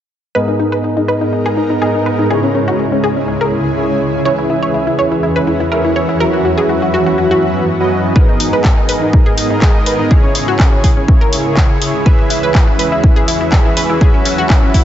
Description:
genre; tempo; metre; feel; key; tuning
progressive house; 123 BPM; 4/4; straight; G# minor; A4 = 440 Hz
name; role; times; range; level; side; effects
shimmering ambient pad; sustained chords; 1.2-14.8 s; C#2 to A#4; -19 LUFS; right 1 dB; chorus, built-in reverb, vintage 12-bit sampler grit, sidechain pumping
analog pluck; arpeggios; 0.3-14.8 s; C#4 to C#5; -18 LUFS; left 1 dB; chorus, cassette tape, sidechain pumping, dub echo
soft supersaw; stabs; 0.4-14.8 s; G#2 to E5; -16 LUFS; equal; sidechain pumping, low-pass filter, dub echo
electronic kick drum; drums; 8.2-14.8 s; none; -10 LUFS; equal; none
deep house drum kit; drums; 8.4-14.8 s; handclaps, hi-hat; -20 LUFS; left 1 dB; sidechain pumping on hats
room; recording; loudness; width
light reverb, digital ambience; nothing above 7.8 kHz; -11 LUFS; side -11 dB against mid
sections
0.4-14.8 A section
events
filter sweep on synth pluck 0.4-14.8; filter sweep on supersaw synth 0.4-14.8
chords
0.4 G#madd9; 2.3 C#m; 4.3 E6; 6.2 F#7sus4; 8.2 G#madd9; 10.1 C#m; 12.1 E6; 14.0 F#7sus4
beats
| 0.35 0.84 1.33 1.82 | 2.30 2.79 3.28 3.77 | 4.25 4.74 5.23 5.72 | 6.21 6.69 7.18 7.67 | 8.16 8.64 9.13 9.62 | 10.11 10.60 11.08 11.57 | 12.06 12.55 13.04 13.52 | 14.01 14.50

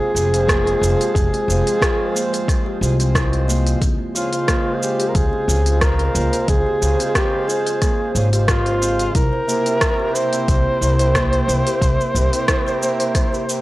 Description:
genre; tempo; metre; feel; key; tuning
organic downtempo; 90 BPM; 4/4; swing 54% on 16ths; unclear; A4 = 440 Hz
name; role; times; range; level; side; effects
mellow duduk; melody; 0.0-13.6 s; F4 to C5; -21 LUFS; equal; tape echo
pedal harmonium; accompaniment; 0.0-13.6 s; F3 to C5; -25 LUFS; right 2 dB; sidechain pumping, tape echo
warbly tape-like pad; sustained chords; 0.0-13.6 s; C3 to C5; -28 LUFS; equal; chorus, built-in reverb, sidechain pumping
upright bass; bass; 0.1-12.3 s; F1 to Db2; -19 LUFS; equal; none
kalimba; arpeggios; 0.2-13.5 s; Bb3 to C5; -28 LUFS; left 2 dB; tape echo
organic electronic drum kit; drums; 0.2-13.6 s; cabasa, hi-hat, rim click; -24 LUFS; equal; none
electronic kick drum; drums; 0.5-13.3 s; none; -20 LUFS; equal; none
room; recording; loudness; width
small room ambience; dry, gritty hardware recording, transformer saturation, cassette tape; -16 LUFS; side -17 dB against mid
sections
0.0-13.6 A section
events
none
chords
0.0 Fm; 3.8 Dbmaj7; 9.2 C7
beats
0.48 | 1.15 1.82 2.48 3.15 | 3.82 4.48 5.15 5.82 | 6.48 7.15 7.82 8.48 | 9.15 9.82 10.48 11.15 | 11.82 12.48 13.15

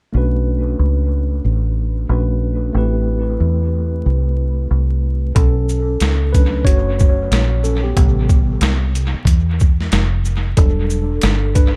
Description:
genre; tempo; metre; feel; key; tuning
hip hop, jazz-hop; 92 BPM; 4/4; swing 61% on 16ths; unclear; A4 = 441 Hz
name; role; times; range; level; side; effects
mellow tine electric piano; accompaniment; 0.1-11.7 s; C3 to C#5; -25 LUFS; equal; dub echo
deep dub fingered electric bass; bass; 0.1-11.7 s; E1 to E2; -19 LUFS; equal; none
boom bap sampler-style drum kit; drums; 5.4-11.7 s; hi-hat, kick drum, shaker, snare drum; -18 LUFS; equal; dub echo
room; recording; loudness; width
little or no reverb; echo-heavy mix, vinyl crackle; -17 LUFS; mono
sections
0.1-5.4 A section; 5.4-11.8 B section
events
tine electric piano solo 5.4-11.8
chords
0.1 Bm9; 2.8 Am9; 5.4 B7sus2; 8.0 Am9; 10.6 Em9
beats
| 0.14 0.79 1.45 2.10 | 2.75 3.40 4.05 4.71 | 5.36 6.01 6.66 7.32 | 7.97 8.62 9.27 9.92 | 10.58 11.23

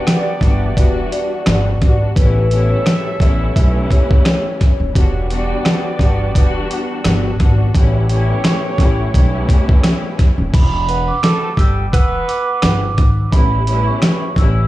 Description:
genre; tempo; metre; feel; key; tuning
hip hop, boom-bap hip-hop; 86 BPM; 4/4; swing 55% on 16ths; E dorian; A4 = 440 Hz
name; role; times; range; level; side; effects
vibraphone with soft mallets; melody; 0.0-4.4, 10.5-14.7 s; B4 to E6; -22 LUFS; right 2 dB; high-pass filter, low-pass filter, dub echo
dark studio string section; accompaniment; 0.0-14.7 s; E2 to F#4; -22 LUFS; left 2 dB; cassette tape, high-pass filter, low-pass filter, dub echo
clear horn section; stabs; 0.0-12.8 s; G3 to E5; -25 LUFS; right 2 dB; high-pass filter, low-pass filter, dub echo
dusty soul sampler-style drum kit; drums; 0.1-14.6 s; crash cymbal, hi-hat, kick drum, rim click, snare drum; -14 LUFS; equal; none
upright bass; bass; 0.4-14.6 s; D#1 to B1; -16 LUFS; equal; none
room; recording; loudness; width
small room ambience; echo-heavy mix, studio reverb; -12 LUFS; side -16 dB against mid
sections
0.0-10.5 A section; 10.5-14.7 B section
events
none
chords
0.0 Em7; 2.2 A7; 5.0 Em7; 7.7 A7; 10.5 Em7; 13.3 A7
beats
0.07 0.77 1.47 | 2.16 2.86 3.56 4.26 | 4.95 5.65 6.35 7.05 | 7.75 8.44 9.14 9.84 | 10.54 11.23 11.93 12.63 | 13.33 14.02

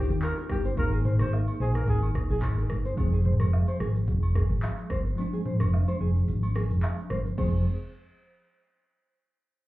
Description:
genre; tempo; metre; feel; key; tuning
afrobeats; 109 BPM; 4/4; swing 55% on 16ths; F dorian; A4 = 442 Hz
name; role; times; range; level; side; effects
breathy alto saxophone; melody; 0.0-2.4 s; G4 to C5; -35 LUFS; equal; tape echo
bell-like tine electric piano; accompaniment; 0.0-7.6 s; F3 to Ab4; -33 LUFS; equal; fast stereo tremolo, low-pass filter
nylon-string guitar; riff; 0.1-7.6 s; G4 to C5; -38 LUFS; right 1 dB; low-pass filter, tape echo
hollow-body short-scale fingered electric bass; bass; 0.1-7.6 s; F1 to Eb2; -26 LUFS; equal; none
afro-pop drum kit; drums; 0.1-7.5 s; crash cymbal, handclaps, hi-hat, kick drum, rim click, shaker, toms; -30 LUFS; equal; overdrive
agogo bells and woodblock; percussion; 0.2-7.6 s; none; -42 LUFS; right 2 dB; none
room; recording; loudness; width
little or no reverb; heard muffled through a wall, club reverb, EQ; -24 LUFS; side -17 dB against mid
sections
0.0-3.0 A section; 3.0-7.4 B section; 7.4-9.6 C section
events
kick muted 5.2-7.4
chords
0.0 Cm; 0.8 Absus2; 3.0 Fm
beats
0.22 | 0.77 1.32 1.88 2.42 | 2.98 3.53 4.08 4.63 | 5.18 5.73 6.28 6.83 | 7.38

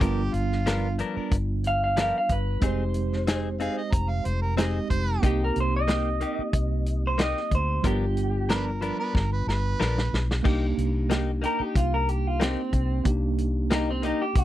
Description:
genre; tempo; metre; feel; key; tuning
straight-eighth soul blues; 92 BPM; 4/4; straight; C minor; A4 = 437 Hz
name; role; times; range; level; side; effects
mellow harmonica; second line; 0.0-10.3 s; F4 to Bb5; -32 LUFS; right 4 dB; overdrive
tine electric piano; accompaniment; 0.0-14.4 s; G3 to G4; -31 LUFS; right 3 dB; medium stereo tremolo
direct-recorded clean electric guitar; stabs; 0.0-14.2 s; F3 to A#4; -31 LUFS; left 5 dB; none
vintage muted fingered electric bass; bass; 0.0-14.4 s; F1 to D2; -27 LUFS; equal; none
warm soul drum kit; drums; 0.0-14.4 s; crash cymbal, hi-hat, kick drum, snare drum; -26 LUFS; equal; none
electric guitar through a small old amp; melody; 1.7-14.4 s; C4 to F5; -28 LUFS; equal; none
room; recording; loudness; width
little or no reverb; dry, close 1970s-style studio recording; -23 LUFS; side -14 dB against mid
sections
0.0-10.4 A section; 10.4-14.4 B section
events
drum fill 9.1-10.4; clean electric guitar solo 10.4-14.4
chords
0.0 G7#9; 2.6 Fm7; 5.2 Cm7; 7.8 G7#9; 10.4 Cm7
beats
| 0.01 0.67 1.32 1.97 | 2.62 3.28 3.93 4.58 | 5.24 5.89 6.54 7.19 | 7.84 8.49 9.15 9.80 | 10.45 11.10 11.75 12.40 | 13.05 13.71 14.36

